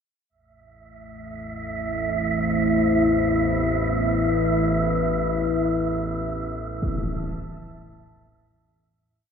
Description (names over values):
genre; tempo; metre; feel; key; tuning
dark ambient drone; free time; none; none; A minor; A4 = 440 Hz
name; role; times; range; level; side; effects
deep dark ambient pad; sustained chords; 1.7-9.0 s; A3 to A5; -24 LUFS; left 2 dB; chorus, built-in reverb
analog drone; drone; 1.3-9.1 s; A1 to E2; -28 LUFS; equal; chorus
wind-like tuned noise texture; texture; 1.2-9.0 s; E5; -28 LUFS; right 6 dB; built-in reverb
impact; percussion; 6.8-7.0 s; none; -30 LUFS; equal; low-pass filter on sfx
room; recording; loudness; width
wet cathedral reverb, RT60 5.8 s; none; -21 LUFS; side -7 dB against mid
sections
0.3-9.0 A section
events
fade-in on synth drone 0.3-9.0; fade-out 4.6-9.0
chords
0.3 Amadd9; 4.6 Esus4